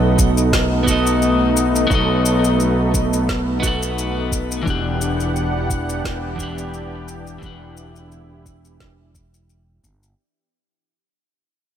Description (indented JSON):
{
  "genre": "sunset chillout",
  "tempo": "87 BPM",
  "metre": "4/4",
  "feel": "swing 54% on 16ths",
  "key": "E minor",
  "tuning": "A4 = 441 Hz",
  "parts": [
    { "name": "electric guitar at the edge of break-up", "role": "accompaniment", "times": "0.0-9.1 s", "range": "E3 to F#5", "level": "-22 LUFS", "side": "moving between left 5 dB and right 6 dB", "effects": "auto-pan, ping-pong delay" },
    { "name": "lush unison pad", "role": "sustained chords", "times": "0.0-10.2 s", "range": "E3 to F#5", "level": "-23 LUFS", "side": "left 1 dB", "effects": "chorus" },
    { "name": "fretless electric bass", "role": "bass", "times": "0.0-10.1 s", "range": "E1 to B1", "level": "-22 LUFS", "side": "equal", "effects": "tube saturation" },
    { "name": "electronic kick drum", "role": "drums", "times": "0.2-10.0 s", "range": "none", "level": "-22 LUFS", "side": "equal", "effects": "none" },
    { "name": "electronic shaker and snare drum", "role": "drums", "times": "0.2-10.2 s", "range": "none", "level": "-25 LUFS", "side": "left 2 dB", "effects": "none" }
  ],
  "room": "light reverb, digital ambience",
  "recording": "none",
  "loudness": "-16 LUFS",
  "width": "side -9 dB against mid",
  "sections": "0.0-10.2 A section",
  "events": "fade-out 0.0-10.2",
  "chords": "0.0 B7; 4.7 Em9",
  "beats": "0.53 1.22 | 1.91 2.60 3.29 3.98 | 4.67 5.36 6.04 6.73 | 7.42 8.11 8.80 9.49"
}